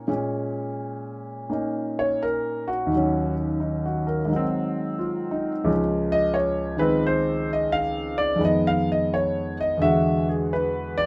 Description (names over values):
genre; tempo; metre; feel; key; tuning
solo jazz; 86 BPM; 4/4; swing 66% on 8ths, rubato; Bb minor; A4 = 440 Hz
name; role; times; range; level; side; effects
warm concert grand piano; solo; 0.0-11.1 s; Db2 to F5; -24 LUFS; equal; none
room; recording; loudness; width
moderate studio reverb, RT60 0.5 s; none; -24 LUFS; mono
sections
0.1-11.1 A section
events
grand piano solo 0.1-11.1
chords
0.1 Bbm7; 4.3 Ab7; 5.7 Dbmaj7; 8.4 Fm7b5; 9.8 E9